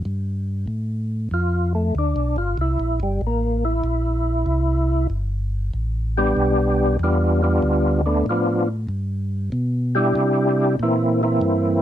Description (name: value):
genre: soul jazz organ trio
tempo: 95 BPM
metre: 4/4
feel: swing 66% on 8ths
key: G mixolydian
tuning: A4 = 441 Hz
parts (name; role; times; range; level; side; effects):
- mellow tonewheel organ; bass; 0.0-11.8 s; G1 to C3; -22 LUFS; equal; slow rotary speaker
- overdriven tonewheel organ; melody; 1.3-11.8 s; D3 to G4; -20 LUFS; equal; slow rotary speaker, chorus vibrato
room: light reverb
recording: dark, warm production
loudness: -19 LUFS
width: side -11 dB against mid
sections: 0.0-11.8 A section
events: tonewheel organ solo 0.0-11.8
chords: 0.0 G9; 2.6 C7; 5.1 G9; 10.2 C9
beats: | 0.04 0.67 1.31 1.94 | 2.57 3.20 3.83 4.47 | 5.10 5.73 6.36 6.99 | 7.63 8.26 8.89 9.52 | 10.15 10.79 11.42